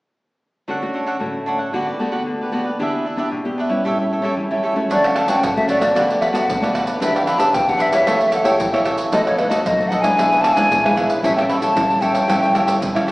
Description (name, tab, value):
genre	samba and choro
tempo	114 BPM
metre	4/4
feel	straight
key	D major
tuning	A4 = 440 Hz
part	cavaquinho	accompaniment	0.7-13.1 s	D4 to F#5	-22 LUFS	right 1 dB	none
part	nylon-string guitar	accompaniment	0.7-13.1 s	A2 to C#5	-22 LUFS	left 1 dB	none
part	breathy hollow jazz flute	melody	4.9-12.8 s	B4 to B5	-18 LUFS	left 1 dB	none
part	maracas, surdo, pandeiro and tamborim	percussion	4.9-13.1 s	none	-22 LUFS	right 1 dB	none
room	wet recital hall reverb, RT60 1.7 s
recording	recorded in a church or concert hall, small speaker sound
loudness	-16 LUFS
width	side -20 dB against mid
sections	0.7-4.9 A section; 4.9-13.1 B section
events	none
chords	0.7 Dmaj7; 1.7 Gmaj9/D; 2.8 Em7; 3.8 A7; 4.9 Dmaj7; 6.0 Gmaj9/D; 7.0 Em7; 8.1 A7; 9.1 B7; 10.2 E7/B; 11.2 A7